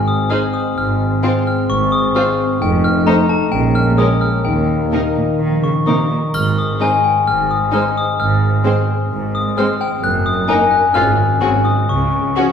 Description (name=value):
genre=cinematic, playful, whimsical film cue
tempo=130 BPM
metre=4/4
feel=straight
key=unclear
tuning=A4 = 439 Hz
part: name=glockenspiel with hard plastic mallets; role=melody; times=0.0-12.5 s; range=G5 to Gb6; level=-18 LUFS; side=left 4 dB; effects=none
part: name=dark French horn section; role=sustained chords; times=0.0-12.5 s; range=F3 to Eb4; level=-21 LUFS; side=left 2 dB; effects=none
part: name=concert harp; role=arpeggios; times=0.0-12.5 s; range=F2 to Bb5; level=-22 LUFS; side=left 2 dB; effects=none
part: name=rich studio cello section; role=bass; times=0.0-12.3 s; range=Eb2 to Eb3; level=-21 LUFS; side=right 3 dB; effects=none
part: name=rich studio double bass section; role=bass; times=0.0-12.3 s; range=F1 to Eb2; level=-23 LUFS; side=right 3 dB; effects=none
part: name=warm studio violin section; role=melody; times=0.3-12.4 s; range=Ab4 to C5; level=-27 LUFS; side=left 3 dB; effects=none
part: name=rich studio violin section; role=second line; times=0.3-12.4 s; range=C4 to Ab4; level=-25 LUFS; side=left 3 dB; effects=none
part: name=rich studio viola section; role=accompaniment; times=0.3-12.4 s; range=Ab3 to Eb4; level=-25 LUFS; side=right 3 dB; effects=none
part: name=triangle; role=percussion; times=6.3-7.2 s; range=none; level=-34 LUFS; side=left 1 dB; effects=none
room=wet scoring stage reverb, RT60 1.6 s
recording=heard from further back in the room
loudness=-13 LUFS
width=side -7 dB against mid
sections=0.0-12.5 A section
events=none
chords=0.0 Ab; 0.8 Fm/Ab; 2.6 F7; 3.5 Bbm7; 4.5 Eb; 6.3 Ab; 8.2 Fm/Ab; 10.0 Ebm/Gb; 10.9 Db/Ab; 11.4 Ab7; 11.9 Db